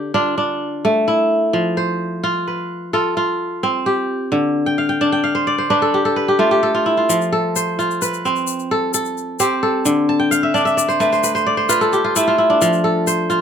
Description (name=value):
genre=west african traditional, West African string and xylophone music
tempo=87 BPM (dotted quarters)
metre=12/8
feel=straight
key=F lydian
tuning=A4 = 440 Hz
part: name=kora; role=arpeggios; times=0.0-13.4 s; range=D3 to A5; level=-15 LUFS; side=equal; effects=none
part: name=egg shaker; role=percussion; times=7.1-13.4 s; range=none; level=-24 LUFS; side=left 9 dB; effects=none
room=little or no reverb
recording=close, detailed microphones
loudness=-15 LUFS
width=side -8 dB against mid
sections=0.0-7.1 A section; 7.1-13.4 B section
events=kora fill 4.7-7.1, 10.1-12.6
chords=0.0 Dm; 1.5 F; 4.3 D5; 7.1 F; 9.9 Dm; 12.6 F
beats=0.15 0.85 | 1.54 2.24 2.94 3.63 | 4.33 5.02 5.71 6.41 | 7.10 7.79 8.48 9.17 | 9.86 10.54 11.23 11.92 | 12.61 13.29